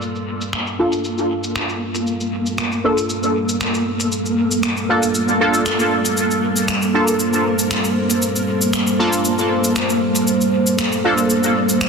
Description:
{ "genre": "dub techno", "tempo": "117 BPM", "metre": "4/4", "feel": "swing 54% on 16ths", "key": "G minor", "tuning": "A4 = 440 Hz", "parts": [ { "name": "deep dark ambient pad", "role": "sustained chords", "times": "0.0-11.9 s", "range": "G3 to F5", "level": "-21 LUFS", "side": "right 1 dB", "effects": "chorus, built-in reverb" }, { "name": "electronic cabasa and finger snaps", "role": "drums", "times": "0.0-11.9 s", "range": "none", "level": "-24 LUFS", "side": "left 1 dB", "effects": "soft clipping on snare, low-pass filter on snare, low-pass filter on hats, low-pass filter on perc, low-pass filter on room, dub echo" }, { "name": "flickering grainy texture", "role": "texture", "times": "0.0-11.9 s", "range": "Bb3", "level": "-24 LUFS", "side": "equal", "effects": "built-in reverb" }, { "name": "resonant sweep polysynth", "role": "stabs", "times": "0.8-11.1 s", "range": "Bb3 to A4", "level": "-20 LUFS", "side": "equal", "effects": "chorus, phaser, dub echo" } ], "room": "moderate huge ambient reverb, RT60 6.0 s", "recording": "dense, heavily limited modern master", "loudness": "-16 LUFS", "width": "side -5 dB against mid", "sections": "0.0-11.9 A section", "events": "filter sweep on ambient pad 0.0-11.9", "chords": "0.0 Gm9", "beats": "| 0.02 0.53 1.04 1.56 | 2.07 2.58 3.09 3.61 | 4.12 4.63 5.15 5.66 | 6.17 6.68 7.20 7.71 | 8.22 8.73 9.25 9.76 | 10.27 10.79 11.30 11.81" }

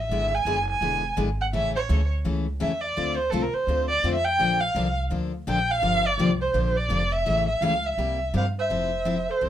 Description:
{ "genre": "acoustic string swing (jazz manouche)", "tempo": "168 BPM", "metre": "4/4", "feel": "swing 60% on 8ths", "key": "D minor", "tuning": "A4 = 440 Hz", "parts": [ { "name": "warm violin", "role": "melody", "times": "0.0-9.5 s", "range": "A4 to G#5", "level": "-24 LUFS", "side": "right 1 dB", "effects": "none" }, { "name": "upright bass", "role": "bass", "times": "0.0-9.5 s", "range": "E1 to G2", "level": "-28 LUFS", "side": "right 1 dB", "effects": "none" }, { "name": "picked steel-string acoustic guitar", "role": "accompaniment", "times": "0.1-9.5 s", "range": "C3 to A4", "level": "-28 LUFS", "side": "left 4 dB", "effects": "none" }, { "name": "breathy clarinet", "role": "second line", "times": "8.4-9.5 s", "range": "A4 to C5", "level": "-32 LUFS", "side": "right 7 dB", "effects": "none" } ], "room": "light reverb", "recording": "minimal, uncompressed stereo recording", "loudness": "-22 LUFS", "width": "side -11 dB against mid", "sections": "0.0-8.7 A section", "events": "none", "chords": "0.1 E7; 1.5 A; 3.0 Dm7; 4.4 Bbmaj7; 5.8 Gm7; 7.3 A; 8.0 C7; 8.7 Fmaj7", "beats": "| 0.11 0.46 0.82 1.18 | 1.53 1.89 2.25 2.61 | 2.96 3.32 3.68 4.04 | 4.39 4.75 5.11 5.47 | 5.83 6.19 6.54 6.90 | 7.26 7.62 7.98 8.34 | 8.69 9.05 9.41" }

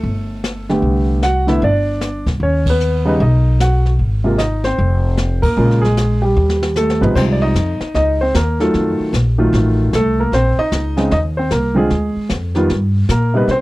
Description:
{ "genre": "jazz piano trio", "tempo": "152 BPM", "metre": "4/4", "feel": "swing 64% on 8ths", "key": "unclear", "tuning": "A4 = 441 Hz", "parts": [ { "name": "warm baby grand piano", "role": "melody", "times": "0.0-13.6 s", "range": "C3 to Gb5", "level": "-16 LUFS", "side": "equal", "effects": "none" }, { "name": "upright bass", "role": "bass", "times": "0.0-13.6 s", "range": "F1 to C3", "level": "-16 LUFS", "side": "equal", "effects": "none" }, { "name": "jazz brush drum kit", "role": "drums", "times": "0.0-13.6 s", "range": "brushed snare drum, crash cymbal, hi-hat, kick drum, ride cymbal, snare drum, toms", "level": "-23 LUFS", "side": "left 1 dB", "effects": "none" } ], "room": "studio reverb", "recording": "dry, close 1970s-style studio recording", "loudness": "-13 LUFS", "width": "side -19 dB against mid", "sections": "0.0-7.2 A section; 7.2-13.6 B section", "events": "band accent 2.6, 5.4; drum fill 6.4-7.2", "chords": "0.0 Gsus2; 0.8 Cmaj7sus2; 2.4 Ebm7b13; 4.0 Ab; 4.8 F; 5.6 Bbm7; 6.4 Ebaug; 7.2 Ab6; 8.7 F7b9; 10.3 Bbm11; 11.9 Ddim; 12.7 G", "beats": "0.04 0.43 | 0.83 1.22 1.62 2.01 | 2.41 2.81 3.20 3.60 | 3.99 4.39 4.78 5.18 | 5.57 5.97 6.37 6.76 | 7.16 7.55 7.95 8.34 | 8.74 9.13 9.53 9.93 | 10.32 10.72 11.11 11.51 | 11.90 12.30 12.70 13.09 | 13.49" }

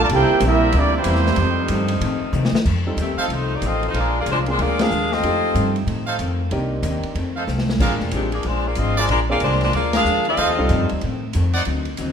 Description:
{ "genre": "jazz, big band swing", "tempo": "187 BPM", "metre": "4/4", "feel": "swing 63% on 8ths", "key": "unclear", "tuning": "A4 = 439 Hz", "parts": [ { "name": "clear trumpet section", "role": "melody", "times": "0.0-2.2 s", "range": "Bb3 to A5", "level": "-21 LUFS", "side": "right 3 dB", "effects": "none" }, { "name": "warm trombone section", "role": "second line", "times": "0.0-2.2 s", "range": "E3 to G4", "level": "-21 LUFS", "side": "right 4 dB", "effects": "none" }, { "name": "clear saxophone section", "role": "sustained chords", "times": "0.0-2.7 s", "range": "Bb2 to E4", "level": "-29 LUFS", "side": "left 2 dB", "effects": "none" }, { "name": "upright bass", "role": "bass", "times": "0.0-12.1 s", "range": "F1 to C3", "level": "-22 LUFS", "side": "equal", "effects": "none" }, { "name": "vintage hollow-body jazz guitar", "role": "accompaniment", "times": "0.1-12.1 s", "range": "F2 to G4", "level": "-28 LUFS", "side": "left 4 dB", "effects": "none" }, { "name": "open jazz drum kit", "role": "drums", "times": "0.1-12.1 s", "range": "crash cymbal, hi-hat, kick drum, ride cymbal, snare drum", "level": "-28 LUFS", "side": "equal", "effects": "none" }, { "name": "warm concert grand piano", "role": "accompaniment", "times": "2.9-11.0 s", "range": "G3 to A4", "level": "-28 LUFS", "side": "right 1 dB", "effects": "none" }, { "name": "clear saxophone section", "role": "melody", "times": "3.0-5.8, 8.1-10.9 s", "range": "Eb3 to F5", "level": "-21 LUFS", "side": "left 2 dB", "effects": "none" }, { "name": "bright trumpet section", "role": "stabs", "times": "3.2-11.6 s", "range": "D4 to Gb5", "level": "-26 LUFS", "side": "right 4 dB", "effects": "none" } ], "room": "light reverb", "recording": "minimal, uncompressed stereo recording", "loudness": "-17 LUFS", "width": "side -7 dB against mid", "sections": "0.0-2.7 A section; 2.7-12.1 B section", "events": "drum fill 2.3-2.7, 7.5-7.8; band accent 4.8, 9.9", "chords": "0.1 C7; 1.4 F7; 3.9 Bb7; 5.2 F7; 6.5 Cm7; 7.2 F7; 7.8 Bb7; 10.4 F7", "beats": "| 0.10 0.42 0.74 1.06 | 1.38 1.71 2.02 2.35 | 2.67 2.99 3.31 3.63 | 3.95 4.27 4.59 4.91 | 5.23 5.55 5.88 6.20 | 6.52 6.84 7.16 7.48 | 7.80 8.12 8.45 8.77 | 9.09 9.41 9.73 10.05 | 10.37 10.70 11.02 11.34 | 11.66 11.98" }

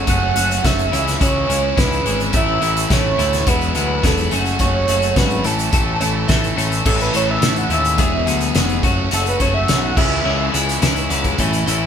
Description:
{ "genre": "indie rock", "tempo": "106 BPM", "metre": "4/4", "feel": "straight", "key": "A major", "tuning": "A4 = 437 Hz", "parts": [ { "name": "cranked stack guitar", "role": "riff", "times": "0.0-11.9 s", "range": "E2 to A4", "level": "-24 LUFS", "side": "right 6 dB", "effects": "overdrive" }, { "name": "twelve-string electric guitar", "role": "riff", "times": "0.0-11.9 s", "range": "E2 to A4", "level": "-21 LUFS", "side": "left 5 dB", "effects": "none" }, { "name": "growling picked electric bass", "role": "bass", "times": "0.0-11.9 s", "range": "E1 to D#2", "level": "-22 LUFS", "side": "equal", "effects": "overdrive" }, { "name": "overdriven synth lead", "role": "melody", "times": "0.1-10.5 s", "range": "A4 to F#5", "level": "-22 LUFS", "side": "right 3 dB", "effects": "chorus" }, { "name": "loose indie drum kit", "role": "drums", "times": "0.1-11.8 s", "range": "crash cymbal, hi-hat, kick drum, snare drum", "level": "-20 LUFS", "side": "equal", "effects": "none" }, { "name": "metallic FM bell", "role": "second line", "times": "6.0-6.8, 10.5-11.9 s", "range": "C#5 to G#5", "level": "-29 LUFS", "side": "right 3 dB", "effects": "chorus, phaser" } ], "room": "moderate large studio reverb, RT60 1.1 s", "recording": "band playing live in one room", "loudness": "-15 LUFS", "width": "side -8 dB against mid", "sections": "0.0-6.9 A section; 6.9-11.9 B section", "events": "analog synth lead solo 6.9-11.9", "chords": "0.0 F#m; 0.9 C#m; 2.3 A; 3.5 Eadd9; 4.3 F#m; 5.4 A; 8.0 Eadd9; 8.8 F#m; 10.0 C#m", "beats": "| 0.07 0.64 1.21 1.77 | 2.34 2.90 3.47 4.03 | 4.60 5.16 5.73 6.29 | 6.86 7.42 7.99 8.55 | 9.12 9.69 10.25 10.82 | 11.39" }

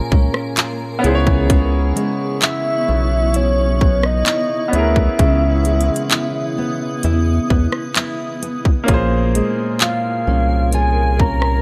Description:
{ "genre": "contemporary R&B", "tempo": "65 BPM", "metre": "4/4", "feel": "straight", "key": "unclear", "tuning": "A4 = 439 Hz", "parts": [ { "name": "clear grand piano", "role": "accompaniment", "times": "0.0-11.6 s", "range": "Bb3 to Db5", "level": "-26 LUFS", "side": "equal", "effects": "none" }, { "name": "granular cloud pad", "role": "sustained chords", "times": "0.0-11.6 s", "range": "Cb4 to Eb6", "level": "-29 LUFS", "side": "equal", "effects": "built-in reverb" }, { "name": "nylon-string guitar", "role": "arpeggios", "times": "0.0-11.6 s", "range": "Bb2 to F4", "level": "-26 LUFS", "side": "equal", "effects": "none" }, { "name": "rubbery square bass", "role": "bass", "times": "0.1-11.6 s", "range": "Bb1 to Fb2", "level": "-19 LUFS", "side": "equal", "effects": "none" }, { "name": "trap drum kit", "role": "drums", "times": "0.1-11.6 s", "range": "handclaps, hi-hat, kick drum, rim click", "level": "-18 LUFS", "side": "equal", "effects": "none" }, { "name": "soft octave-layered synth lead", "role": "melody", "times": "2.4-11.6 s", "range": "Db5 to Bb5", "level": "-23 LUFS", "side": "equal", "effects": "chorus, tape echo" } ], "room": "little or no reverb", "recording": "none", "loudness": "-17 LUFS", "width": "mono", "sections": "0.0-11.6 A section", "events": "none", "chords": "0.0 Bbm7; 1.0 Dbm7; 8.9 Bbm7", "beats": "0.58 | 1.50 2.42 3.35 4.27 | 5.19 6.12 7.04 7.96 | 8.88 9.81 10.73" }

